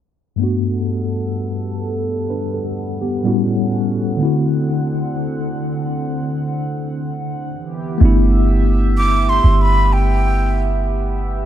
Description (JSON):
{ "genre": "contemporary R&B", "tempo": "63 BPM", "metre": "4/4", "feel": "straight", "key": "G major", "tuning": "A4 = 440 Hz", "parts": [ { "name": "mellow tine electric piano", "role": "accompaniment", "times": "0.4-11.5 s", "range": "G2 to B4", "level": "-20 LUFS", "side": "left 2 dB", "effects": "medium stereo tremolo" }, { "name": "chorused pulse-width pad", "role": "sustained chords", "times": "0.4-11.5 s", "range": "D3 to F#5", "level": "-25 LUFS", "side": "right 4 dB", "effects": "none" }, { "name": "warm 808-style bass", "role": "bass", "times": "8.0-11.5 s", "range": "G1", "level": "-15 LUFS", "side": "right 1 dB", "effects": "none" }, { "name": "breathy jazz flute", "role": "melody", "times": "9.0-10.9 s", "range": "G5 to D6", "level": "-19 LUFS", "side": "equal", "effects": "ping-pong delay" } ], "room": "light reverb", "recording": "dark, warm production, low-pass filter", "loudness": "-16 LUFS", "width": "side -11 dB against mid", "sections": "0.4-8.0 A section; 8.0-11.5 B section", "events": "filter sweep 0.4-8.0", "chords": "0.4 Gmaj9; 3.2 A13; 4.2 D7; 7.5 G6" }